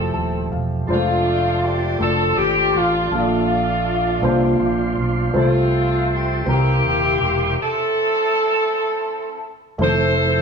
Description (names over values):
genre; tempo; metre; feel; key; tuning
gospel; 54 BPM (dotted quarters); 6/8; straight; F major; A4 = 440 Hz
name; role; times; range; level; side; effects
warm saxophone section; melody; 0.0-10.4 s; A3 to C5; -20 LUFS; equal; none
warm upright piano; accompaniment; 0.0-10.4 s; Bb2 to A5; -22 LUFS; left 2 dB; none
fingered electric bass; bass; 0.0-10.4 s; Eb1 to C2; -22 LUFS; right 1 dB; none
mellow tonewheel organ; sustained chords; 0.9-10.4 s; F3 to C6; -25 LUFS; right 2 dB; slow rotary speaker, chorus vibrato
electric slide guitar; melody; 9.8-10.4 s; C5; -26 LUFS; right 5 dB; none
room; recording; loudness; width
wet stone room reverb, RT60 1.3 s; band playing live in one room; -16 LUFS; side -5 dB against mid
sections
0.9-9.8 A section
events
upright piano fill 0.0-0.9; stop 7.6-9.8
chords
0.0 Fmaj7; 0.9 F6; 3.1 Bbmaj7; 4.2 C9sus4; 5.3 F/C; 6.5 C7; 7.6 C6; 9.8 Fmaj7